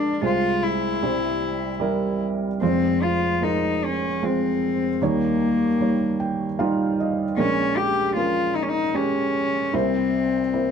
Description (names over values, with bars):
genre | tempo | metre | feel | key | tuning
acoustic folk-pop ballad | 76 BPM | 3/4 | straight | F minor | A4 = 441 Hz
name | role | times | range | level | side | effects
warm cello | melody | 0.0-10.7 s | Bb3 to G4 | -23 LUFS | left 4 dB | none
felt-muted upright piano | accompaniment | 0.0-10.7 s | F1 to G5 | -23 LUFS | right 4 dB | none
room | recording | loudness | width
wet studio reverb, RT60 0.5 s | dark, warm production | -20 LUFS | side -7 dB against mid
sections
0.0-2.6 A section; 2.6-10.7 A section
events
none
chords
0.2 Fm/C; 1.0 C; 2.6 Fm; 5.0 Eb7; 7.4 Bbm7; 9.7 C7